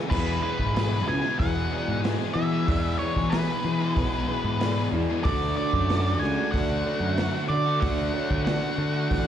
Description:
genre	classic rock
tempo	93 BPM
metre	4/4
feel	straight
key	E mixolydian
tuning	A4 = 441 Hz
part	overdriven electric guitar	riff	0.0-9.3 s	E2 to G#4	-33 LUFS	left 11 dB	slapback echo
part	overdriven semi-hollow guitar	riff	0.0-9.3 s	D3 to F#4	-34 LUFS	right 11 dB	slapback echo
part	octave-fuzz lead guitar	melody	0.1-9.3 s	B4 to G#5	-30 LUFS	right 1 dB	distortion, slapback echo
part	dark upright piano	accompaniment	0.1-9.3 s	E4 to E5	-35 LUFS	equal	slapback echo
part	raw garage guitar	riff	0.1-9.3 s	E2 to D4	-33 LUFS	left 1 dB	overdrive, slapback echo
part	fuzz fingered electric bass	bass	0.1-9.3 s	A1 to E3	-27 LUFS	equal	overdrive
part	vintage drum kit	drums	0.1-9.3 s	crash cymbal, hi-hat, kick drum, snare drum	-30 LUFS	equal	none
room	studio ambience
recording	live gig heard through the venue's PA, club reverb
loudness	-23 LUFS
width	side -10 dB against mid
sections	0.1-9.3 A section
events	none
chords	0.1 E; 5.2 D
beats	| 0.11 0.75 1.39 2.04 | 2.68 3.32 3.96 4.60 | 5.25 5.89 6.53 7.18 | 7.82 8.46 9.11

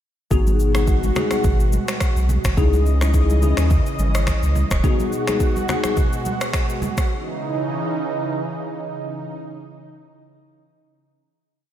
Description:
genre	afrobeats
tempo	106 BPM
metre	4/4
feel	swing 55% on 16ths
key	C# minor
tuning	A4 = 442 Hz
part	mellow tine electric piano	accompaniment	0.3-6.0 s	B3 to G#4	-24 LUFS	left 5 dB	ensemble chorus
part	lush unison pad	sustained chords	0.3-9.3 s	B2 to D#5	-26 LUFS	right 2 dB	chorus, sidechain pumping
part	warm sub bass	bass	0.3-4.8 s	D#1 to D#2	-18 LUFS	equal	none
part	afro-pop drum kit	drums	0.3-7.1 s	finger snaps, kick drum, rim click, shaker	-22 LUFS	equal	none
part	congas	percussion	0.3-7.0 s	none	-30 LUFS	right 2 dB	none
room	light reverb, digital ambience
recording	none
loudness	-18 LUFS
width	side -11 dB against mid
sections	0.3-9.4 verse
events	none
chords	0.3 G#m7; 2.6 C#madd9; 4.8 G#m7; 7.1 C#madd9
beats	| 0.31 0.88 1.44 2.01 | 2.57 3.14 3.71 4.27 | 4.84 5.41 5.97 6.54 | 7.10 7.67 8.23 8.80

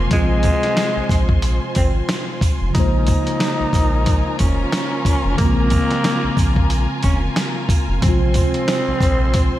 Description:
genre	hip hop, boom-bap hip-hop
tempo	91 BPM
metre	4/4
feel	swing 57% on 16ths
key	Bb minor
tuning	A4 = 442 Hz
part	growling tenor saxophone	melody	0.0-9.6 s	Ab3 to Eb4	-23 LUFS	equal	high-pass filter, low-pass filter, ping-pong delay
part	mellow tine electric piano	accompaniment	0.0-9.6 s	C3 to C5	-23 LUFS	equal	medium stereo tremolo, high-pass filter, low-pass filter
part	warm symphonic string section	sustained chords	0.0-9.6 s	F4 to C6	-27 LUFS	equal	high-pass filter, low-pass filter
part	soft dub sub bass	bass	0.0-9.5 s	F1 to Bb1	-20 LUFS	equal	none
part	dusty soul sampler-style drum kit	drums	0.1-9.5 s	hi-hat, kick drum, snare drum	-19 LUFS	equal	none
part	sleigh bells	percussion	0.1-9.5 s	none	-37 LUFS	right 5 dB	none
room	moderate lush hall reverb, RT60 2.0 s, small room ambience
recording	dreamy mix soaked in reverb, vinyl crackle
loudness	-15 LUFS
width	side -14 dB against mid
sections	0.0-9.6 A section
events	none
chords	0.0 Fm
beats	| 0.11 0.77 1.43 2.09 | 2.75 3.41 4.07 4.73 | 5.39 6.05 6.71 7.37 | 8.03 8.68 9.34

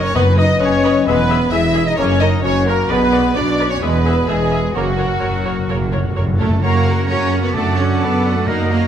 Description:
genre	cinematic, heroic adventure film score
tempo	130 BPM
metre	4/4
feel	straight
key	F# mixolydian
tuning	A4 = 440 Hz
part	rich symphonic violin section	melody	0.0-8.9 s	F#4 to A#5	-26 LUFS	left 1 dB	none
part	concert flute	second line	0.0-8.9 s	F#4 to F#5	-25 LUFS	left 1 dB	none
part	dark clarinet	second line	0.0-8.9 s	F#4 to B4	-26 LUFS	left 2 dB	none
part	rich chamber violin section	second line	0.0-8.9 s	F#4 to E5	-24 LUFS	left 2 dB	none
part	mellow French horn section	sustained chords	0.0-8.8 s	F#3 to E4	-21 LUFS	left 2 dB	none
part	concert harp	arpeggios	0.0-8.9 s	E2 to G#5	-26 LUFS	left 8 dB	none
part	clear symphonic cello section	bass	0.0-8.9 s	E2 to C#4	-22 LUFS	right 3 dB	none
part	rich symphonic double bass section	bass	0.0-8.9 s	E1 to F#2	-20 LUFS	right 3 dB	none
part	rich studio viola section	accompaniment	0.1-8.9 s	D#4 to E5	-26 LUFS	right 1 dB	none
part	bright trombone section	sustained chords	0.1-8.9 s	B2 to D4	-29 LUFS	right 5 dB	none
part	timpani	percussion	0.2-0.8, 4.8-8.9 s	F#2	-22 LUFS	equal	none
part	bright oboe	second line	6.6-8.9 s	A#4 to D5	-27 LUFS	right 1 dB	none
room	moderate scoring stage reverb, RT60 1.9 s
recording	none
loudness	-14 LUFS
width	side -9 dB against mid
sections	0.0-6.6 A section; 6.6-8.9 B section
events	timpani fill 4.8-6.6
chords	0.2 B/F#; 1.1 E; 2.0 F#; 2.9 Bm; 3.8 E; 4.8 F#; 7.5 D/F#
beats	0.15 0.61 | 1.07 1.53 1.99 2.45 | 2.91 3.37 3.83 4.29 | 4.76 5.23 5.70 6.16 | 6.63 7.09 7.55 8.01 | 8.47

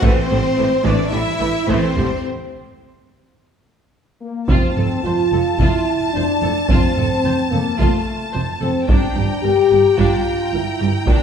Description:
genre	cinematic, epic orchestral film score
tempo	109 BPM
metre	4/4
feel	straight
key	unclear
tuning	A4 = 440 Hz
part	rich studio violin section	melody	0.0-11.2 s	C5 to Bb5	-28 LUFS	left 3 dB	none
part	warm symphonic violin section	second line	0.0-11.2 s	C4 to A5	-26 LUFS	left 3 dB	none
part	clear symphonic viola section	accompaniment	0.0-11.2 s	D3 to C5	-27 LUFS	right 2 dB	none
part	mellow French horn section	sustained chords	0.0-11.2 s	A3 to G4	-19 LUFS	left 2 dB	none
part	rich symphonic double bass section	bass	0.0-11.2 s	F1 to Bb1	-23 LUFS	right 4 dB	none
part	warm studio cello section	bass	0.0-11.2 s	F2 to Bb2	-24 LUFS	right 4 dB	none
part	taiko ensemble	drums	0.0-11.2 s	none	-20 LUFS	equal	none
room	wet scoring stage reverb, RT60 1.7 s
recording	studio reverb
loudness	-15 LUFS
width	side -7 dB against mid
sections	0.0-4.5 A section; 4.5-11.2 B section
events	break 2.2-4.5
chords	0.0 Am; 2.2 N.C.; 4.5 F; 8.9 Gm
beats	| 0.03 0.58 1.12 1.68 | 2.24 2.81 3.37 3.93 | 4.49 5.04 5.59 6.14 | 6.69 7.24 7.79 8.34 | 8.89 9.44 9.98 10.53 | 11.07

